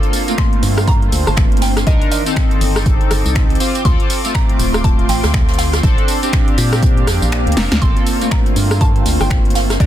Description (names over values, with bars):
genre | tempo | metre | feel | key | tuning
deep house | 121 BPM | 4/4 | swing 60% on 16ths | G minor | A4 = 440 Hz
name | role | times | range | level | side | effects
mallet-like synth pluck | melody | 0.0-9.9 s | D5 to D6 | -26 LUFS | right 2 dB | wide subtle chorus, cassette tape, digital delay
deep dark ambient pad | sustained chords | 0.0-9.9 s | D4 to D6 | -28 LUFS | right 3 dB | chorus, built-in reverb, vintage 12-bit sampler grit, sidechain pumping
chorused polysynth | stabs | 0.0-9.9 s | A3 to C5 | -20 LUFS | left 1 dB | sidechain pumping, digital delay
deep house drum kit | drums | 0.0-9.9 s | finger snaps, hi-hat, rim click, snare drum, tambourine | -22 LUFS | equal | overdrive, soft clipping on snare
jazz brush drum kit | drums | 0.0-9.9 s | hi-hat, snare drum | -30 LUFS | right 2 dB | none
dark chamber string section | texture | 0.0-9.9 s | Eb3 to D6 | -26 LUFS | right 1 dB | sidechain pumping
electronic kick drum | drums | 0.4-9.9 s | none | -15 LUFS | equal | none
organ-like FM bass | bass | 0.6-9.9 s | D1 to Bb2 | -18 LUFS | equal | sidechain pumping
room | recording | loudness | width
small room reverb | dense, heavily limited modern master | -12 LUFS | side -12 dB against mid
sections
0.0-9.9 A section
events
kick drops out 7.3-7.8; drum fill 7.6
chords
0.0 Gm11; 1.9 Cm9; 3.6 Dm7; 5.8 Bbmaj7; 7.8 Gm11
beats
0.38 0.88 1.37 | 1.87 2.36 2.86 3.35 | 3.85 4.35 4.84 5.34 | 5.83 6.33 6.83 7.32 | 7.82 8.31 8.81 9.30 | 9.80